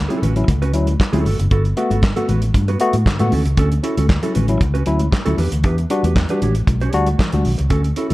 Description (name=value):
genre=disco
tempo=116 BPM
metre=4/4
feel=straight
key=unclear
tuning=A4 = 438 Hz
part: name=fingered electric bass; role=bass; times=0.0-8.1 s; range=F#1 to A2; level=-18 LUFS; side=equal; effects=none
part: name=mellow electric guitar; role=accompaniment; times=0.1-8.1 s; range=B3 to C#5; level=-25 LUFS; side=right 4 dB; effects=none
part: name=mellow tine electric piano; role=accompaniment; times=0.1-8.1 s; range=G2 to F#4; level=-21 LUFS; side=left 2 dB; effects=none
part: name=warm soul drum kit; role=drums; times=0.1-8.1 s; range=handclaps, hi-hat, kick drum, snare drum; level=-20 LUFS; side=equal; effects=none
part: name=congas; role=percussion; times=0.1-8.1 s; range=none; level=-27 LUFS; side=left 3 dB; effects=none
room=small room ambience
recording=dark, warm production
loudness=-15 LUFS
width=side -18 dB against mid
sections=0.0-8.1 A section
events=none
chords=0.0 Dmaj7; 1.3 Gmaj9; 3.3 Dmaj7; 5.4 Em7